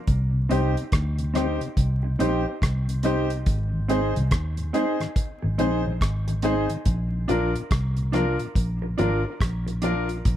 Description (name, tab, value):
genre	roots reggae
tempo	71 BPM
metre	4/4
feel	swing 63% on 16ths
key	C minor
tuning	A4 = 440 Hz
part	vintage muted fingered electric bass	bass	0.1-10.4 s	Ab1 to Eb2	-25 LUFS	equal	none
part	damped 70s drum kit	drums	0.1-10.4 s	hi-hat, kick drum, rim click	-25 LUFS	equal	none
part	mellow tonewheel organ	accompaniment	0.3-9.9 s	Ab2 to Eb4	-31 LUFS	left 1 dB	chorus vibrato, slow rotary speaker
part	mellow electric guitar	accompaniment	0.5-10.0 s	C4 to Bb4	-30 LUFS	right 2 dB	tape echo
part	warm concert grand piano	stabs	0.5-10.1 s	D4 to C5	-27 LUFS	left 2 dB	none
room	light reverb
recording	echo-heavy mix, vinyl crackle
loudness	-22 LUFS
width	side -11 dB against mid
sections	0.0-10.4 A section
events	none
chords	0.1 Cm; 3.5 Ab; 6.9 Bb